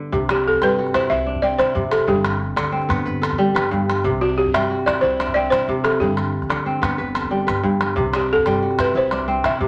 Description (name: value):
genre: west african traditional, West African string and xylophone music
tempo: 122 BPM (dotted quarters)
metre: 12/8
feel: straight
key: C lydian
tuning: A4 = 440 Hz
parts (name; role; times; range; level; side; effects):
- kora; arpeggios; 0.0-9.7 s; G2 to D5; -24 LUFS; equal; none
- upright bass; bass; 0.1-9.7 s; G1 to C3; -32 LUFS; equal; none
- calabash; percussion; 0.1-9.7 s; none; -27 LUFS; equal; none
- balafon; melody; 0.3-9.7 s; F#4 to E5; -22 LUFS; equal; none
room: wet studio reverb, RT60 0.8 s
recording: none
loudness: -20 LUFS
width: mono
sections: 0.1-9.7 A section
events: none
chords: 0.1 C; 2.1 G; 4.0 C; 6.0 G; 8.0 C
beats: | 0.12 0.61 1.10 1.59 | 2.08 2.57 3.06 3.56 | 4.04 4.54 5.03 5.52 | 6.01 6.50 6.99 7.48 | 7.97 8.46 8.95 9.44